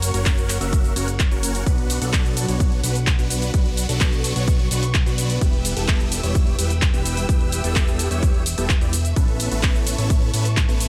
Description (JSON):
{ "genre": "EDM, festival progressive house", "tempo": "128 BPM", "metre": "4/4", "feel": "straight", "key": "B minor", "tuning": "A4 = 441 Hz", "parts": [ { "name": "warm studio string section", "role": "sustained chords", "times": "0.0-10.9 s", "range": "D4 to E6", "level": "-36 LUFS", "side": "equal", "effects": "sidechain pumping" }, { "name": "big supersaw lead", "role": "riff", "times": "0.0-10.9 s", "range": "F#3 to E5", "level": "-29 LUFS", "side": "equal", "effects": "phaser, sidechain pumping, tape echo" }, { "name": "fat analog bass", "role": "bass", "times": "0.0-10.9 s", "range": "E1 to B1", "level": "-26 LUFS", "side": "equal", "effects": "sidechain pumping" }, { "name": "big-room dance drum kit", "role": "drums", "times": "0.0-10.9 s", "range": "cabasa, handclaps, hi-hat, ride cymbal", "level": "-28 LUFS", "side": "equal", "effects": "none" }, { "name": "electronic kick drum", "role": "drums", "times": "0.3-10.7 s", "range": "none", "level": "-22 LUFS", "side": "equal", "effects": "overdrive" } ], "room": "digital ambience", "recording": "none", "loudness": "-20 LUFS", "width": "mono", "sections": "0.0-10.9 A section", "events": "none", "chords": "0.0 F#; 1.7 Bm; 5.4 Em; 9.2 Aadd9", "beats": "0.26 0.73 1.20 | 1.66 2.13 2.60 3.07 | 3.54 4.01 4.48 4.95 | 5.41 5.88 6.35 6.82 | 7.29 7.76 8.23 8.70 | 9.16 9.63 10.10 10.57" }